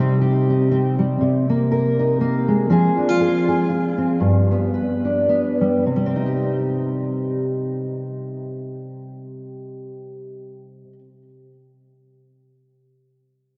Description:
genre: folk.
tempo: 102-121 BPM.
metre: 3/4.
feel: swing 57% on 8ths.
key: C minor.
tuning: A4 = 440 Hz.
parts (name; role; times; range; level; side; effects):
fingerpicked steel-string acoustic guitar; solo; 0.0-11.1 s; G2 to B4; -21 LUFS; equal; lush chorus, tape echo.
room: wet huge ambient reverb, RT60 4.7 s.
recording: dreamy mix soaked in reverb, nothing above 7.7 kHz.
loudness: -20 LUFS.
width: mono.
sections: 0.0-5.9 A section; 5.9-9.4 B section.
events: slowing down 2.7-5.9.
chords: 0.0 Cm; 1.2 Abadd9/C; 2.7 Fm; 4.2 G; 5.9 Cm.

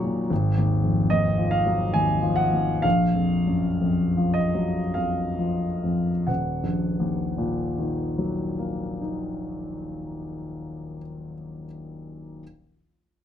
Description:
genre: classical, impressionist solo piano.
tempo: 44-78 BPM.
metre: 3/4.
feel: rubato.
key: Eb minor.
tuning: A4 = 440 Hz.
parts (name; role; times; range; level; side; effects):
warm grand piano; solo; 0.0-12.4 s; Eb1 to Db6; -23 LUFS; equal; none.
room: moderate large studio reverb, RT60 0.9 s.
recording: close, detailed microphones.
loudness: -22 LUFS.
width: side -9 dB against mid.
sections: 0.0-6.3 A section; 6.3-10.2 B section.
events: slowing down 0.0-6.3.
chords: 0.3 Ab5; 2.8 Bb5; 6.3 Ebm.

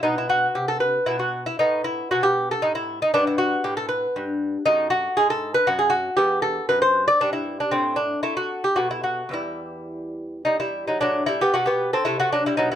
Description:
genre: classical, baroque-style dance for lute.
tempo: 116 BPM.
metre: 3/4.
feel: rubato.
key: E minor.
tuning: A4 = 440 Hz.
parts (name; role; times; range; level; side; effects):
lute; solo; 0.0-12.8 s; E2 to D5; -20 LUFS; equal; none.
room: light reverb.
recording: none.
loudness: -20 LUFS.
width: side -10 dB against mid.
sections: 0.0-11.0 A section; 11.0-12.8 A section.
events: none.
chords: 0.0 B5; 1.6 B7b13/A; 3.1 Gmaj9; 4.7 F#m69; 6.2 Em; 7.7 N.C.; 8.8 B5; 9.3 Em; 11.0 Am.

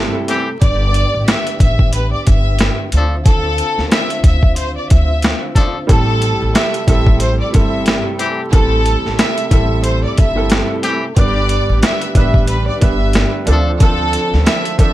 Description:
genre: hip hop, boom-bap hip-hop.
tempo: 91 BPM.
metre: 4/4.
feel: swing 58% on 16ths.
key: A minor.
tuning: A4 = 440 Hz.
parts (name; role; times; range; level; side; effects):
clear studio violin section; melody; 0.0-14.9 s; A4 to E5; -20 LUFS; equal; high-pass filter, low-pass filter.
warm upright piano; accompaniment; 0.0-0.4, 5.9-14.9 s; F3 to B4; -20 LUFS; right 4 dB; cassette tape, high-pass filter, low-pass filter.
percussive tonewheel organ; sustained chords; 0.0-14.9 s; C3 to A4; -27 LUFS; left 1 dB; fast rotary speaker, high-pass filter, low-pass filter.
upright bass; bass; 0.0-14.9 s; G1 to D2; -17 LUFS; equal; none.
warm horn section; stabs; 0.3-13.7 s; E3 to A4; -21 LUFS; left 3 dB; high-pass filter, low-pass filter, ping-pong delay.
boom bap sampler-style drum kit; drums; 0.3-14.9 s; hi-hat, kick drum, snare drum; -14 LUFS; equal; none.
room: light reverb.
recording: vinyl crackle.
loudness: -12 LUFS.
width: side -15 dB against mid.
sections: 0.0-14.9 A section.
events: none.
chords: 0.0 Am7; 0.6 G; 2.9 Dm7; 5.9 Am7; 11.2 G; 13.5 Dm7.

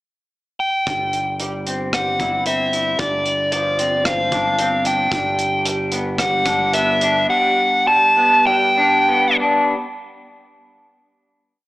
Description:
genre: post-rock.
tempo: 112 BPM.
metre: 4/4.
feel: uneven beats.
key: G major.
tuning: A4 = 435 Hz.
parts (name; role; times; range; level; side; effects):
overdriven electric guitar; melody; 0.6-9.4 s; D5 to A5; -17 LUFS; equal; slapback echo.
electric guitar through a small old amp; arpeggios; 0.9-9.7 s; G2 to E4; -22 LUFS; left 1 dB; lush chorus, slapback echo.
growling fingered electric bass; bass; 0.9-7.2 s; G1; -29 LUFS; equal; overdrive.
big rock drum kit; drums; 0.9-7.1 s; hi-hat, kick drum, rim click; -25 LUFS; right 1 dB; none.
room: moderate concert hall reverb, RT60 2.1 s.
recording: small speaker sound.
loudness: -15 LUFS.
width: side -19 dB against mid.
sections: 0.0-0.9 pickup bar; 0.9-9.7 A section.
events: slowing down 5.1-9.7.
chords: 0.0 N.C.; 0.9 C/G; 3.0 Dm7/G; 5.1 Gmaj7.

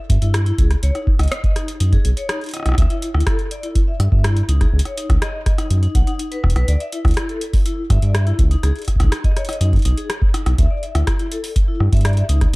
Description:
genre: IDM.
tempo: 123 BPM.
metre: 4/4.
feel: straight.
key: unclear.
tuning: A4 = 442 Hz.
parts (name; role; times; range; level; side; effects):
vibraphone with medium mallets; arpeggios; 0.1-12.6 s; D#4 to F#5; -27 LUFS; left 2 dB; dub echo.
round analog bass; bass; 0.1-12.6 s; B1 to G2; -16 LUFS; equal; none.
booming analog drum machine; drums; 0.1-12.6 s; hi-hat, rim click; -27 LUFS; equal; dub echo.
electronic kick drum; drums; 0.1-12.5 s; none; -17 LUFS; equal; none.
room: digital ambience.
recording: dark, warm production.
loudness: -15 LUFS.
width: side -24 dB against mid.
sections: 0.0-12.6 A section.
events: none.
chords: 0.0 Dsus4 (rootless); 0.6 C#sus2; 2.8 Dsus24; 4.5 C#9sus4; 6.7 Dsus24; 8.4 C#sus2; 10.6 Dsus24.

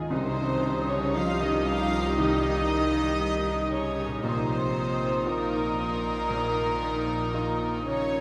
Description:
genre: cinematic, emotional film score for orchestra.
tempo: 58 BPM.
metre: 4/4.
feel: rubato.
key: C phrygian.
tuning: A4 = 441 Hz.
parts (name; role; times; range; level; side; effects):
warm symphonic violin section; melody; 0.0-8.2 s; Ab4 to F5; -34 LUFS; equal; none.
clear baby grand piano; accompaniment; 0.0-8.2 s; Bb1 to F5; -36 LUFS; equal; none.
concert harp; arpeggios; 0.0-8.1 s; Bb2 to Eb5; -43 LUFS; equal; none.
clear clarinet; second line; 0.1-8.1 s; F4 to G4; -39 LUFS; equal; none.
silver concert flute; second line; 0.1-8.1 s; Eb6; -37 LUFS; equal; none.
warm symphonic violin section; second line; 0.1-8.2 s; Eb4; -38 LUFS; equal; none.
dark symphonic viola section; accompaniment; 0.1-8.2 s; Eb3 to G3; -38 LUFS; equal; none.
mellow French horn section; sustained chords; 0.1-8.2 s; Bb3 to F4; -37 LUFS; equal; none.
rich symphonic double bass section; bass; 0.1-8.2 s; Bb1 to C2; -38 LUFS; equal; none.
warm symphonic cello section; bass; 0.1-8.2 s; Bb2 to F3; -37 LUFS; equal; none.
tam-tam; percussion; 0.1-4.2 s; none; -42 LUFS; equal; none.
room: wet cathedral reverb, RT60 5.1 s.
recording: recorded in a church or concert hall.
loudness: -27 LUFS.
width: mono.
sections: 0.1-8.2 A section.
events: band accent 0.1-1.1.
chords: 0.1 Cm; 4.2 Bbsus4.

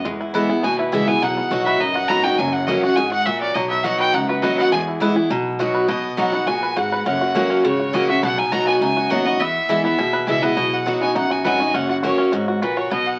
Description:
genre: bluegrass.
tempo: 205 BPM.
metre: 4/4.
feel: straight.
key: B major.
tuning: A4 = 440 Hz.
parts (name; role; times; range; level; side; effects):
clear fiddle; melody; 0.0-13.2 s; B4 to A#5; -24 LUFS; equal; none.
picked steel-string acoustic guitar; accompaniment; 0.0-13.2 s; E2 to F#4; -22 LUFS; equal; none.
bluegrass banjo; arpeggios; 0.0-13.2 s; F#3 to B4; -28 LUFS; equal; none.
upright bass; bass; 0.1-13.2 s; F#1 to E2; -35 LUFS; equal; none.
room: moderate studio reverb, RT60 0.8 s.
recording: very old 78 rpm record, vinyl crackle.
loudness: -19 LUFS.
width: mono.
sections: 0.0-5.9 A section; 5.9-13.2 B section.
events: fiddle solo 0.0-5.9.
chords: 0.0 E; 1.2 B; 2.4 F#; 3.6 B; 4.7 E; 5.3 B; 7.1 F#; 8.2 B; 9.4 E; 10.6 B; 11.7 F#.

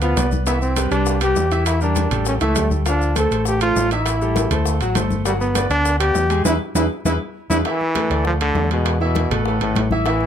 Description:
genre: latin, salsa.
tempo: 200 BPM.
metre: 4/4.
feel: straight.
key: unclear.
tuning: A4 = 437 Hz.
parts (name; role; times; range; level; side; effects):
clear trombone; melody; 0.0-10.3 s; A2 to A4; -22 LUFS; equal; plate reverb.
bright grand piano; accompaniment; 0.0-10.3 s; E3 to G#5; -23 LUFS; equal; none.
fingered electric bass; bass; 0.0-10.3 s; G1 to E2; -21 LUFS; equal; none.
bongos; percussion; 0.0-10.3 s; none; -30 LUFS; left 6 dB; none.
congas; percussion; 0.0-10.3 s; none; -27 LUFS; left 3 dB; none.
maracas; percussion; 0.0-7.6 s; none; -31 LUFS; left 8 dB; none.
timbales; percussion; 0.0-10.2 s; none; -27 LUFS; right 7 dB; none.
room: light reverb.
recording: close, detailed microphones.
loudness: -16 LUFS.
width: side -9 dB against mid.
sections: 0.0-7.7 A section; 7.7-10.3 B section.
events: band accent 6.5-7.7; drum fill 6.9-7.7.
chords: 0.5 Cmaj7; 1.7 Em7b5; 2.3 A7; 2.9 Dm7; 4.1 Am7; 4.7 D7; 5.3 Gmaj7; 6.5 E; 7.7 Asus2; 8.3 D5; 8.9 E; 9.5 Asus2.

